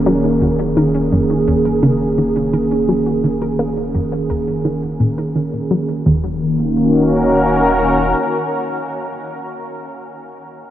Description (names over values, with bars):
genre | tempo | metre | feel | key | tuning
ambient, sequencer-driven space music | 85 BPM | 4/4 | straight | Eb minor | A4 = 440 Hz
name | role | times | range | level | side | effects
sweeping resonant pad | sustained chords | 0.0-9.5 s | D#3 to Bb4 | -16 LUFS | equal | chorus
soft round pluck | arpeggios | 0.0-6.4 s | Db4 to Bb4 | -33 LUFS | right 1 dB | chorus, auto-pan, analog delay
round analog bass | bass | 0.0-8.1 s | Eb1 | -30 LUFS | equal | none
analog pluck | riff | 0.1-6.4 s | Eb2 to Bb3 | -19 LUFS | equal | chorus, analog delay
room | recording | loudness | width
wet huge ambient reverb, RT60 8.0 s | worn, warbling old tape, cassette tape, warbly pitch drift | -14 LUFS | side -12 dB against mid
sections
0.0-6.1 A section; 6.1-8.9 B section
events
fade-out on synth arpeggio sound 0.0-6.1; fade-out on analog synth bass 0.0-6.1; filter sweep on synth arpeggio sound 0.0-6.1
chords
0.0 Ebm7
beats
| 0.41 1.12 1.83 2.53 | 3.24 3.94 4.65 5.36 | 6.06 6.77 7.47 8.18